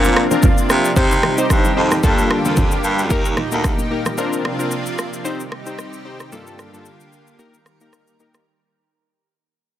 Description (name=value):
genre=afrobeats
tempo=112 BPM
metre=4/4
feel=swing 55% on 16ths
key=unclear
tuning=A4 = 440 Hz
part: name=warm analog keys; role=accompaniment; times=0.0-8.4 s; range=G2 to C5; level=-22 LUFS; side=left 2 dB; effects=chorus
part: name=lush unison pad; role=sustained chords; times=0.0-8.5 s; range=Bb2 to Bb4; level=-24 LUFS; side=right 1 dB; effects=chorus, sidechain pumping
part: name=raspy baritone saxophone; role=bass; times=0.0-3.7 s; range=D2 to C3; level=-19 LUFS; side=right 1 dB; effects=none
part: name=afro-pop drum kit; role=drums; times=0.0-8.5 s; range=kick drum, rim click, shaker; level=-19 LUFS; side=equal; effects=soft clipping on snare
part: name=bongos and congas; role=percussion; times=0.0-4.2 s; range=none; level=-24 LUFS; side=right 2 dB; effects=none
room=little or no reverb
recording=dense, heavily limited modern master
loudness=-15 LUFS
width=side -12 dB against mid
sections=0.0-8.5 A section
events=fade-out 0.0-8.5; break 7.4-8.5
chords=0.0 Bbadd9; 1.0 Cm; 2.0 Gm7; 3.1 Eb; 4.2 Bbadd9; 5.2 Cm; 6.3 Gm7; 7.4 Eb